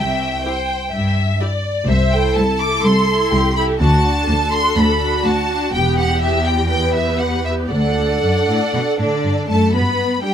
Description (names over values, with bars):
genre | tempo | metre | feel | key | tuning
quick classical-period movement for string orchestra | 124 BPM | 4/4 | rubato | unclear | A4 = 440 Hz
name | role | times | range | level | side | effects
rich studio violin section | melody | 0.0-10.3 s | D5 to D6 | -20 LUFS | equal | none
rich studio violin section | second line | 0.0-10.3 s | D4 to E5 | -23 LUFS | left 2 dB | none
rich studio cello section | bass | 0.0-10.3 s | C2 to B3 | -19 LUFS | equal | none
rich studio double bass section | bass | 0.0-10.1 s | E1 to G2 | -20 LUFS | right 1 dB | none
rich studio viola section | accompaniment | 0.5-10.3 s | B3 to A4 | -22 LUFS | right 2 dB | none
room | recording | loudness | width
little or no reverb | close, detailed microphones | -15 LUFS | side -9 dB against mid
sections
0.0-9.7 A section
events
none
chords
0.0 C; 1.9 Am/C; 3.8 D; 5.7 Em; 7.7 D; 9.7 G